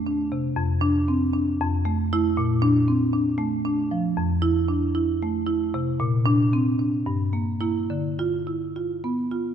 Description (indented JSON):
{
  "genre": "classical, contemporary piece for solo marimba",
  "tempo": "229 BPM (eighths)",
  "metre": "7/8",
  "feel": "uneven beats, rubato",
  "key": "unclear",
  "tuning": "A4 = 440 Hz",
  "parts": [
    { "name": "marimba with medium hard mallets", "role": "solo", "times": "0.0-9.5 s", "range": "F2 to F4", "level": "-21 LUFS", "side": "equal", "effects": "none" }
  ],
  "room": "wet scoring stage reverb, RT60 1.7 s",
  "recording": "none",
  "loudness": "-21 LUFS",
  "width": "side -8 dB against mid",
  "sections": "0.0-9.5 A section",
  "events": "none",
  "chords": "0.0 F6; 0.6 Dm7/F; 1.6 Fmaj7; 2.4 Bbmaj7; 4.2 Fmaj7; 6.0 Bbadd9; 7.1 Gm6; 7.9 Dm6"
}